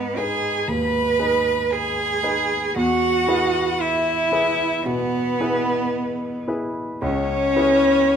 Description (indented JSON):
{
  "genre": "classical, slow romantic movement for piano trio",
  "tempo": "57 BPM",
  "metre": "4/4",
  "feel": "rubato",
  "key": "unclear",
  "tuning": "A4 = 438 Hz",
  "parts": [
    { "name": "rich violin", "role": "melody", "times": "0.0-8.2 s", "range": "B4 to B5", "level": "-24 LUFS", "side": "left 9 dB", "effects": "none" },
    { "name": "rich cello", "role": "second line", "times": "0.0-8.2 s", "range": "B3 to B4", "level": "-21 LUFS", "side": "right 5 dB", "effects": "none" },
    { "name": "warm grand piano", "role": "accompaniment", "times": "0.0-8.2 s", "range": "C#2 to B4", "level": "-25 LUFS", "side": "left 1 dB", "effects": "none" }
  ],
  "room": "moderate recital hall reverb, RT60 1.4 s",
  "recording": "close, detailed microphones",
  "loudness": "-19 LUFS",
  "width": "side -8 dB against mid",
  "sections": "0.0-8.2 A section",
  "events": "none",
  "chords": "0.0 G#m; 2.8 E; 7.0 C#m7"
}